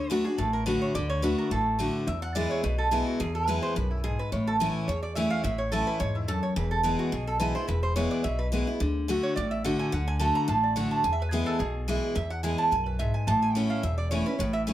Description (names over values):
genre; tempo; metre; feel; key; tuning
bluegrass; 214 BPM; 4/4; swing 54% on 8ths; E mixolydian; A4 = 440 Hz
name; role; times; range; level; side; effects
lap resonator guitar; melody; 0.0-14.6 s; E4 to A#5; -30 LUFS; right 2 dB; none
picked steel-string acoustic guitar; accompaniment; 0.0-14.7 s; E2 to F#4; -28 LUFS; left 1 dB; none
upright bass; bass; 0.0-14.7 s; E1 to E2; -31 LUFS; equal; none
room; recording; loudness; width
moderate studio reverb, RT60 0.7 s; none; -25 LUFS; side -13 dB against mid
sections
0.0-14.7 A section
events
resonator guitar played with a steel bar solo 0.0-14.7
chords
0.0 D; 2.1 E; 4.3 A; 6.6 E; 8.8 D; 11.0 E; 13.3 A